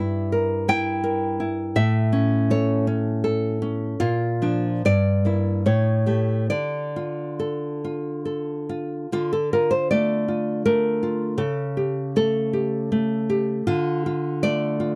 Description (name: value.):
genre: romantic piece for solo classical guitar.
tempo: 67-85 BPM.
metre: 3/4.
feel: rubato.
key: D minor.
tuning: A4 = 440 Hz.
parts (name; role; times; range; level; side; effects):
nylon-string guitar; solo; 0.0-15.0 s; G2 to G5; -23 LUFS; equal; none.
room: little or no reverb.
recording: dry, close 1970s-style studio recording.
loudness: -23 LUFS.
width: mono.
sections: 0.0-9.1 A section; 9.1-15.0 A section.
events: none.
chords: 0.0 Edim/G; 1.8 A; 4.0 Bb; 4.8 Edim/G; 5.7 A7; 6.5 Dm; 11.4 A7/C#; 13.7 Dm.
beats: 0.33 1.05 | 1.78 2.51 3.24 | 3.99 4.84 5.66 | 6.50 7.38 8.24 | 9.10 9.88 10.63 | 11.38 12.14 12.90 | 13.65 14.41.